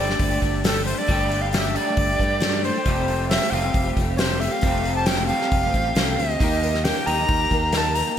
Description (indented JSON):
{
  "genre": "folk rock and heartland rock",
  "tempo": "135 BPM",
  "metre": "4/4",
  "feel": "straight",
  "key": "F major",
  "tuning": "A4 = 440 Hz",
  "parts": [
    { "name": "breathy bright tenor recorder", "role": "melody", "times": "0.0-8.2 s", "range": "A4 to Bb5", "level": "-24 LUFS", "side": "right 1 dB", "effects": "ping-pong delay" },
    { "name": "picked steel-string acoustic guitar", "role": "accompaniment", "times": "0.0-8.2 s", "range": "F2 to G4", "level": "-28 LUFS", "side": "left 4 dB", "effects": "ensemble chorus" },
    { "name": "electric guitar through a small old amp", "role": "riff", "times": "0.0-8.2 s", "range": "Eb3 to G4", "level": "-28 LUFS", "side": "right 1 dB", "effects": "analog chorus" },
    { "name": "fingered electric bass", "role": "bass", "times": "0.0-8.0 s", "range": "F1 to G2", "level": "-26 LUFS", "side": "equal", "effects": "none" },
    { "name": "unplugged drum kit", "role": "drums", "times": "0.1-8.1 s", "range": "hi-hat, kick drum, snare drum", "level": "-24 LUFS", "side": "equal", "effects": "gated reverb" }
  ],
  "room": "moderate lush hall reverb, RT60 2.0 s, small room ambience",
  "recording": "bright 1980s-style digital production",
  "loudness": "-19 LUFS",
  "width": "side -9 dB against mid",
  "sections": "0.0-8.2 A section",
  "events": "none",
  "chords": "0.0 Gsus2; 2.9 Fadd9; 6.4 Eb"
}